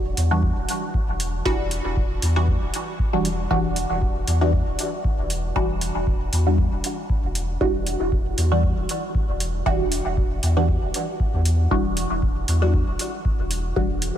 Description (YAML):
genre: dub techno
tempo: 117 BPM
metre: 4/4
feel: swing 54% on 16ths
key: E minor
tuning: A4 = 440 Hz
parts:
  - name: filtered dub chord stab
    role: stabs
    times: 0.0-14.2 s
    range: E3 to F#4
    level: -25 LUFS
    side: equal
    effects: phaser, sidechain pumping, dub echo
  - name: warm sub bass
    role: bass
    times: 0.0-14.2 s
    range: E1 to E2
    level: -23 LUFS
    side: equal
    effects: sidechain pumping
  - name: electronic hi-hat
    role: drums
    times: 0.2-14.1 s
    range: none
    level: -29 LUFS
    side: right 1 dB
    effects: studio reverb
  - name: electronic kick drum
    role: drums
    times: 0.4-13.9 s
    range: none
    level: -24 LUFS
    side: equal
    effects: studio reverb
room: light reverb, digital ambience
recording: none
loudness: -20 LUFS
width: side -10 dB against mid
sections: 0.0-14.2 A section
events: none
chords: 0.0 Em9